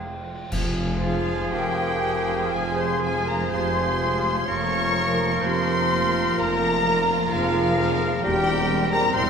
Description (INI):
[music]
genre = classical, slow romantic movement for symphony orchestra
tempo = 54-66 BPM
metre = 4/4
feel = rubato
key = F minor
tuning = A4 = 435 Hz
[part]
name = warm symphonic violin section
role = melody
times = 0.0-9.3 s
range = C5 to Db6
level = -28 LUFS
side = left 2 dB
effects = none
[part]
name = clear oboe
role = second line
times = 0.0-9.3 s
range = Ab4 to Bb4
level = -32 LUFS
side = right 2 dB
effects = none
[part]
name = warm bassoon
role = accompaniment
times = 0.0-9.3 s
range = F3 to C4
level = -33 LUFS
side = right 2 dB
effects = none
[part]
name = warm symphonic viola section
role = accompaniment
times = 0.0-9.3 s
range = F3 to F4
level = -34 LUFS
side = equal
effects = none
[part]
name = concert harp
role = arpeggios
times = 0.0-9.3 s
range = E3 to C5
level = -36 LUFS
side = left 7 dB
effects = none
[part]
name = rich symphonic double bass section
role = bass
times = 0.0-9.3 s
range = E1 to F1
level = -32 LUFS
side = right 3 dB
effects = none
[part]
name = warm symphonic cello section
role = bass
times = 0.0-9.3 s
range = E2 to F2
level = -32 LUFS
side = right 2 dB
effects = none
[part]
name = dark trombone section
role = sustained chords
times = 0.5-9.3 s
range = F3 to C4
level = -32 LUFS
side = right 5 dB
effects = none
[part]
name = mellow French horn section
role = sustained chords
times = 0.5-9.3 s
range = E4 to Bb4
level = -31 LUFS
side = left 3 dB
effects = none
[part]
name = mellow trumpet section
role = stabs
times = 0.5-9.3 s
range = Ab4 to Bb4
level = -33 LUFS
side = equal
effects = none
[part]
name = dark tuba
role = bass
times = 0.5-9.3 s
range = E1 to F1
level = -33 LUFS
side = right 3 dB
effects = none
[part]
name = clash cymbals and concert bass drum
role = percussion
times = 0.5-2.5 s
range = none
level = -33 LUFS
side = equal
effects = none
[part]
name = clear clarinet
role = second line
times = 1.0-9.3 s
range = F4 to Db5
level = -29 LUFS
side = equal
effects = none
[part]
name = large flute ensemble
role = second line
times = 1.0-9.3 s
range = F5 to Db6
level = -30 LUFS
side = left 2 dB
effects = none
[part]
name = warm symphonic violin section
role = second line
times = 1.0-9.3 s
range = C4 to C5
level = -34 LUFS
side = left 3 dB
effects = none
[sound]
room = wet scoring stage reverb, RT60 2.0 s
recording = minimal, uncompressed stereo recording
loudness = -20 LUFS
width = side -6 dB against mid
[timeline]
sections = 0.5-9.3 A section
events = band accent 0.5-1.5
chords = 0.0 Fm; 4.5 Bbm/F; 8.2 C7/E